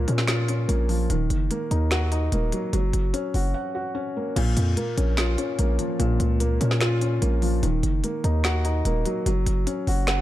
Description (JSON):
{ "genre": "hip hop, trap", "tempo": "147 BPM", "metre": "4/4", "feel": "half-time", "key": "Bb minor", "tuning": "A4 = 441 Hz", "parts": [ { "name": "felt-muted upright piano", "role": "accompaniment", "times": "0.0-10.2 s", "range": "Bb2 to Gb5", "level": "-26 LUFS", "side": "left 1 dB", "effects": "low-pass filter" }, { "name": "distorted 808-style bass", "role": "bass", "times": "0.0-10.2 s", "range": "Eb1 to Bb2", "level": "-23 LUFS", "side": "equal", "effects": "distortion" }, { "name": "trap drum kit", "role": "drums", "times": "0.1-10.2 s", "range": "crash cymbal, finger snaps, hi-hat, snare drum", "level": "-30 LUFS", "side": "equal", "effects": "none" } ], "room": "little or no reverb", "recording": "dark, warm production", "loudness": "-21 LUFS", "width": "side -14 dB against mid", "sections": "0.0-4.4 A section; 4.4-10.2 B section", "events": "break 3.5-4.4", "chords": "0.0 Bbm; 1.1 Ebm; 2.7 Gb; 4.4 Bbm; 7.6 Ebm; 9.3 Gb5" }